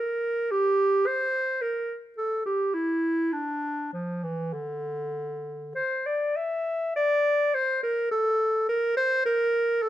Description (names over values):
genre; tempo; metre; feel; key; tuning
classical, baroque-style fantasia for unaccompanied clarinet; 49-56 BPM; 3/4; rubato; D minor; A4 = 440 Hz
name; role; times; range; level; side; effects
warm clarinet; solo; 0.0-9.9 s; D3 to E5; -24 LUFS; equal; none
room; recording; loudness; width
moderate stone room reverb, RT60 1.0 s; minimal, uncompressed stereo recording; -24 LUFS; side -13 dB against mid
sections
0.0-7.0 A section; 7.0-9.9 B section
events
none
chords
none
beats
1.07 2.17 | 3.34 4.55 5.76 | 6.97 8.12 9.25